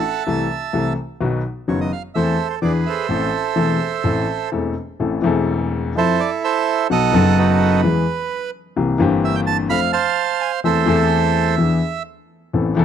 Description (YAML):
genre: tango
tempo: 127 BPM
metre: 4/4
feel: rubato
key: unclear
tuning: A4 = 440 Hz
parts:
  - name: bandoneon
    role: melody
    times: 0.0-12.0 s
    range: D#4 to B5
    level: -20 LUFS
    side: right 9 dB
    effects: none
  - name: warm baby grand piano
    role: accompaniment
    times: 0.3-12.8 s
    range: E1 to A4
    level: -17 LUFS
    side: left 3 dB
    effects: none
room: studio ambience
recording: dry, close 1970s-style studio recording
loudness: -16 LUFS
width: side -8 dB against mid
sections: 0.0-5.0 A section; 5.0-12.8 B section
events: none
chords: 0.3 Am/C; 1.2 B; 2.1 Am/E; 2.6 E7; 3.1 Am; 6.0 Fmaj7; 6.9 B7; 7.8 E; 8.8 C7; 9.7 F; 10.6 Am/E; 11.6 E7